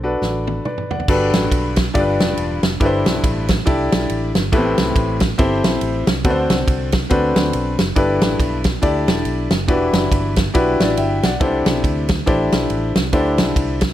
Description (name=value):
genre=uptempo gospel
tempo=140 BPM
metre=4/4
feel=swing 59% on 8ths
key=G major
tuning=A4 = 440 Hz
part: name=bright grand piano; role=accompaniment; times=0.0-13.8 s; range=G2 to G5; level=-19 LUFS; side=left 2 dB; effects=none
part: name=fingered electric bass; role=bass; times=0.0-13.9 s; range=E1 to D2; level=-23 LUFS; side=right 1 dB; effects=none
part: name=natural country drum kit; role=drums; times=0.2-13.9 s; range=crash cymbal, kick drum, ride cymbal, snare drum, toms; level=-19 LUFS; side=right 1 dB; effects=none
room=light reverb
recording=none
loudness=-15 LUFS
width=side -12 dB against mid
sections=0.0-1.1 A section; 1.1-13.9 B section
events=drum fill 0.2-1.1; break 0.6-1.1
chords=0.0 D; 1.1 Gmaj9; 1.9 G7; 2.8 C69/G; 4.5 Am9; 6.2 D7; 8.0 Em9; 11.4 C69; 13.1 D9sus4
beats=0.21 0.65 | 1.08 1.51 1.94 2.38 | 2.81 3.24 3.67 4.10 | 4.53 4.96 5.39 5.82 | 6.25 6.68 7.11 7.54 | 7.96 8.39 8.82 9.26 | 9.69 10.12 10.54 10.97 | 11.41 11.84 12.27 12.70 | 13.13 13.56